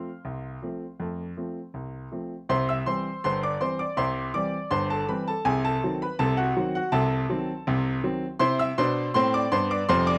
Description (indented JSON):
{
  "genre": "ragtime piano",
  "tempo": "81 BPM",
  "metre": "2/4",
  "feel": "straight",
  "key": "C major",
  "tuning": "A4 = 440 Hz",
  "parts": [
    { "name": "clear grand piano", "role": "solo", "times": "0.0-10.2 s", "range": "F1 to F6", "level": "-27 LUFS", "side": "equal", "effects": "none" }
  ],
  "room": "light reverb",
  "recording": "close, detailed microphones",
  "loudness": "-27 LUFS",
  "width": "mono",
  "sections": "0.0-2.5 A section; 2.5-10.2 B section",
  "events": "none",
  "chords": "0.0 F; 2.5 C; 5.5 Cdim7; 8.4 C"
}